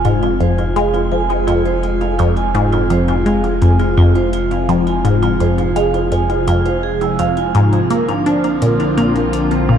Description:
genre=ambient, sequencer-driven space music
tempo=84 BPM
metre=4/4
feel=straight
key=F dorian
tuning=A4 = 440 Hz
part: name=phased analog pad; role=sustained chords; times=0.0-9.8 s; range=C3 to F4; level=-23 LUFS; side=equal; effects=phaser, chorus, shimmer reverb
part: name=vibraphone with hard mallets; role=arpeggios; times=0.0-9.8 s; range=D4 to E6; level=-19 LUFS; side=right 3 dB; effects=auto-pan, tape echo, shimmer reverb
part: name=resonant blip pluck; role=riff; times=0.0-9.8 s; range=F2 to D4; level=-15 LUFS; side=left 1 dB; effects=phaser, tape echo, shimmer reverb
part: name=round analog bass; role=bass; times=0.0-9.8 s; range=F1 to Bb1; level=-23 LUFS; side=equal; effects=none
part: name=electronic hi-hat and bongos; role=percussion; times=0.0-9.7 s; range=none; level=-32 LUFS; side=left 6 dB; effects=tape echo
room=moderate plate reverb, RT60 3.0 s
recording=dark, warm production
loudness=-13 LUFS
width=side -8 dB against mid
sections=0.0-9.8 A section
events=fade-in on analog synth pad 0.0-9.8; fade-in on drum 0.0-9.8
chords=0.0 Fm; 7.9 Bbadd9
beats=0.05 0.76 1.48 | 2.19 2.90 3.62 4.33 | 5.05 5.76 6.48 7.19 | 7.91 8.62 9.33

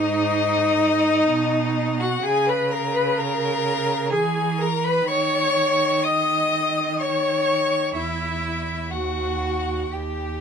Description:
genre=classical, slow romantic movement for string quartet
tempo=63 BPM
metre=3/4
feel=rubato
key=unclear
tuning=A4 = 440 Hz
part: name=rich violin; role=melody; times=0.0-10.4 s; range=D#5 to D#6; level=-25 LUFS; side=left 7 dB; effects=none
part: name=rich violin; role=second line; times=0.0-10.4 s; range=D#4 to D#5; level=-26 LUFS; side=left 4 dB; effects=none
part: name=rich viola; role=accompaniment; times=0.0-10.4 s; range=D#4 to D#5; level=-25 LUFS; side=right 4 dB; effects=none
part: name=clear cello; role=bass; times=0.0-10.4 s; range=D#2 to E3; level=-27 LUFS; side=right 4 dB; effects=none
room=moderate small room reverb, RT60 0.6 s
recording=minimal, uncompressed stereo recording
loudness=-19 LUFS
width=side -7 dB against mid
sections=0.0-10.4 A section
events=none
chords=0.0 G#m; 2.2 C#m; 5.1 C#sus2/D#; 7.9 N.C.; 8.9 D#m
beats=0.38 1.31 | 2.25 3.17 4.11 | 5.07 6.02 6.99 | 7.94 8.90 9.92

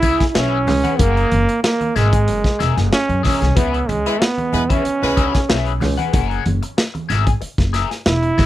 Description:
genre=funk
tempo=94 BPM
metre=4/4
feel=straight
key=unclear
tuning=A4 = 440 Hz
part: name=bright trombone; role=melody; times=0.0-8.5 s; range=G#3 to E4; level=-20 LUFS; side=right 3 dB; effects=tape echo
part: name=electric guitar at the edge of break-up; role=accompaniment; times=0.0-8.5 s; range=G#4 to F#5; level=-23 LUFS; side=left 11 dB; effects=wah
part: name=upright bass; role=bass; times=0.0-8.5 s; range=E1 to F#2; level=-19 LUFS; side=equal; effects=none
part: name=crunchy breakbeat drum kit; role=drums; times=0.0-8.5 s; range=hi-hat, kick drum, snare drum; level=-19 LUFS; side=equal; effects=none
part: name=congas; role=percussion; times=0.0-8.5 s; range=none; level=-28 LUFS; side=right 3 dB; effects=none
part: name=clear horn section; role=second line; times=4.1-5.4 s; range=G#3 to B4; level=-22 LUFS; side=left 1 dB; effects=none
room=little or no reverb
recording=dry, close 1970s-style studio recording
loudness=-15 LUFS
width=side -14 dB against mid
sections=0.0-8.5 A section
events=none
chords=0.0 C#m7; 1.0 F#9; 3.6 C#m7; 6.1 F#9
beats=0.35 | 1.00 1.64 2.28 2.93 | 3.57 4.21 4.85 5.50 | 6.14 6.78 7.42 8.06

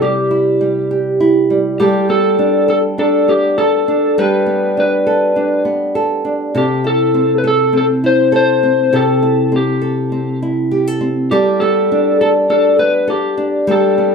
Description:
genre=acoustic pop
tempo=101 BPM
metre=4/4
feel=swing 55% on 16ths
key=G major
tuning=A4 = 440 Hz
part: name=electric slide guitar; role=melody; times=0.0-14.1 s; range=G4 to C5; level=-15 LUFS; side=left 2 dB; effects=none
part: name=nylon-string guitar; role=accompaniment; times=0.0-14.1 s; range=C3 to A4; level=-14 LUFS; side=right 1 dB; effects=none
room=wet small room reverb, RT60 0.5 s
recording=heard from further back in the room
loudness=-12 LUFS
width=side -5 dB against mid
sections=0.0-14.1 A section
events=none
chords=0.0 C; 1.8 Gadd9; 6.5 C6; 11.3 Gadd9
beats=0.01 0.60 1.19 | 1.79 2.38 2.98 3.57 | 4.17 4.76 5.36 5.95 | 6.54 7.14 7.73 8.33 | 8.92 9.52 10.11 10.71 | 11.30 11.89 12.49 13.08 | 13.68

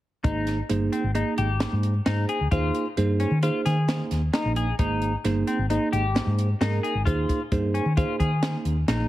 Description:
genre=progressive instrumental, band music in an uneven meter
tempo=132 BPM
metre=5/4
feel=straight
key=Ab major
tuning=A4 = 436 Hz
part: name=bell-like tine electric piano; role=accompaniment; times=0.2-9.1 s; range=Bb3 to Eb5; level=-28 LUFS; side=right 4 dB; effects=phaser
part: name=semi-hollow electric guitar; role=arpeggios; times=0.2-9.1 s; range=C4 to Ab4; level=-30 LUFS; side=left 4 dB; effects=analog chorus, ping-pong delay
part: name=hollow-body short-scale fingered electric bass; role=bass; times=0.2-9.1 s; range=G1 to Eb3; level=-25 LUFS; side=equal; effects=none
part: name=compact cocktail drum kit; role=drums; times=0.2-9.0 s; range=hi-hat, kick drum, snare drum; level=-28 LUFS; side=equal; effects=none
room=light reverb, small room ambience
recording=heavily compressed radio sound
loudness=-22 LUFS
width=side -15 dB against mid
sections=0.2-9.1 A section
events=none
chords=0.2 Abmaj9; 2.5 Ebsus4; 4.8 Abmaj9; 7.1 Ebsus4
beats=| 0.25 0.70 1.16 1.61 2.06 | 2.52 2.97 3.43 3.88 4.34 | 4.79 5.25 5.70 6.16 6.61 | 7.07 7.52 7.97 8.43 8.88

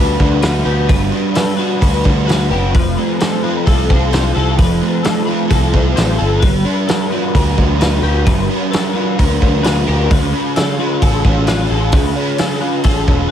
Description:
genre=rock, shoegaze and dream pop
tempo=130 BPM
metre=4/4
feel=straight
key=G major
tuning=A4 = 437 Hz
part: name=twelve-string electric guitar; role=arpeggios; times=0.0-13.3 s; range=G4 to C5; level=-25 LUFS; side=left 9 dB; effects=ensemble chorus, slapback echo
part: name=overdriven semi-hollow guitar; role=riff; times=0.0-13.3 s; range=D3 to B4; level=-19 LUFS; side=left 7 dB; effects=ensemble chorus
part: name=overdriven semi-hollow guitar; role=riff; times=0.0-13.3 s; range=D3 to B4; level=-20 LUFS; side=right 12 dB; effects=reverse reverb
part: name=modern bright picked electric bass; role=bass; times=0.0-13.3 s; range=E1 to D2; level=-16 LUFS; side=equal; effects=none
part: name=loose indie drum kit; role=drums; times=0.2-13.2 s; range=hi-hat, kick drum, snare drum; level=-16 LUFS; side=equal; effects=none
room=light reverb, small room ambience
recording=none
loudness=-12 LUFS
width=side -10 dB against mid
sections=0.0-13.3 A section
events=none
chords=0.0 Gmaj7; 2.7 F; 6.4 Gmaj7; 10.1 D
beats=0.43 | 0.89 1.35 1.82 2.28 | 2.74 3.20 3.66 4.12 | 4.59 5.05 5.51 5.97 | 6.43 6.89 7.35 7.81 | 8.27 8.73 9.19 9.65 | 10.11 10.57 11.03 11.48 | 11.94 12.40 12.86

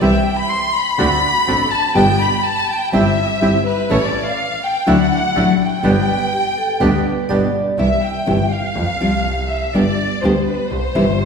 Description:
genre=tango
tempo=124 BPM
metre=4/4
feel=rubato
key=C major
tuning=A4 = 440 Hz
part: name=warm studio violin section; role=second line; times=0.0-11.3 s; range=B4 to C6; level=-18 LUFS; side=left 1 dB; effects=none
part: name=nylon-string guitar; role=accompaniment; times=0.0-11.0 s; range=B2 to G4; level=-18 LUFS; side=left 1 dB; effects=none
part: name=bandoneon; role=stabs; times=0.0-7.5 s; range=B3 to A4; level=-25 LUFS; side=right 3 dB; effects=none
part: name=rich double bass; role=bass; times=0.0-11.3 s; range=G1 to F2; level=-23 LUFS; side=right 1 dB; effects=none
part: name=vibraphone with medium hard mallets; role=second line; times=6.1-7.7 s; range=G4 to D5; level=-24 LUFS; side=right 4 dB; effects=none
room=wet scoring stage reverb, RT60 1.7 s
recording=recorded in a church or concert hall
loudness=-14 LUFS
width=side -6 dB against mid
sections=0.0-7.8 A section; 7.8-11.3 A section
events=violin section solo 0.0-7.8, 7.8-11.3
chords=0.0 C; 1.0 D7; 2.0 G; 2.9 C/G; 3.9 A; 4.9 Dadd9; 5.8 G; 7.8 C; 8.8 F5; 9.7 G; 10.7 C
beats=| 0.02 0.51 0.99 1.48 | 1.97 2.45 2.93 3.42 | 3.90 4.38 4.87 5.35 | 5.83 6.32 6.81 7.29 | 7.79 8.27 8.76 9.25 | 9.73 10.22 10.70 11.19

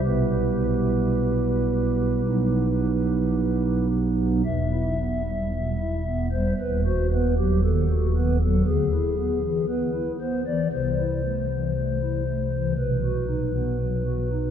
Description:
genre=classical, chorale-style piece for pipe organ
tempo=54-59 BPM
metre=4/4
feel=rubato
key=E minor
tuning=A4 = 439 Hz
part: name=pipe organ, stopped flute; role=solo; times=0.0-14.5 s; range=D#1 to E5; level=-21 LUFS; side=equal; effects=none
room=wet cathedral reverb, RT60 4.9 s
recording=minimal, uncompressed stereo recording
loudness=-22 LUFS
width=side -9 dB against mid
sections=0.0-4.4 A section; 4.4-14.5 B section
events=none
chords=0.0 Em/B; 2.3 B; 4.4 Em; 6.6 B/D#; 8.6 E7/D; 10.7 Am/C; 12.8 B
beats=| 0.04 1.16 2.25 3.35 | 4.45 5.51 6.57 7.62 | 8.64 9.67 10.70 11.73 | 12.76 13.79

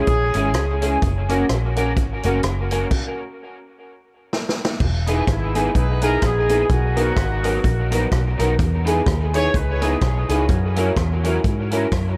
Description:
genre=ska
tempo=127 BPM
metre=4/4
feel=swing 58% on 8ths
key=unclear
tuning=A4 = 440 Hz
part: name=warm horn section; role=melody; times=0.0-0.8, 5.3-11.2 s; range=G#3 to C#5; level=-27 LUFS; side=equal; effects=tape echo
part: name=electric guitar at the edge of break-up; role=accompaniment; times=0.0-11.9 s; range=F#3 to B4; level=-29 LUFS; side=equal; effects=analog chorus, tape echo
part: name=vintage muted fingered electric bass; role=bass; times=0.1-12.2 s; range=E1 to G#2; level=-24 LUFS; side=equal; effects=none
part: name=swinging big-band drum kit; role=drums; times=0.1-12.0 s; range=crash cymbal, hi-hat, kick drum, rim click, snare drum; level=-25 LUFS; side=equal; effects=none
part: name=warm upright piano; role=stabs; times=0.3-11.9 s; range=B3 to A#4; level=-27 LUFS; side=equal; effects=tape echo
room=moderate spring reverb, RT60 1.4 s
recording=none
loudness=-20 LUFS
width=mono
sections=0.0-4.8 A section; 4.8-12.2 B section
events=stop 2.9-4.8; drum fill 4.3-4.8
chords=0.0 C#m; 1.0 F#; 2.9 N.C.; 4.8 Emaj7; 6.7 Bmaj7; 8.6 Emaj7; 10.5 F#7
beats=0.08 0.55 | 1.02 1.50 1.97 2.44 | 2.92 3.39 3.86 4.33 | 4.81 5.28 5.75 6.23 | 6.70 7.17 7.65 8.12 | 8.59 9.07 9.54 10.02 | 10.49 10.97 11.44 11.92

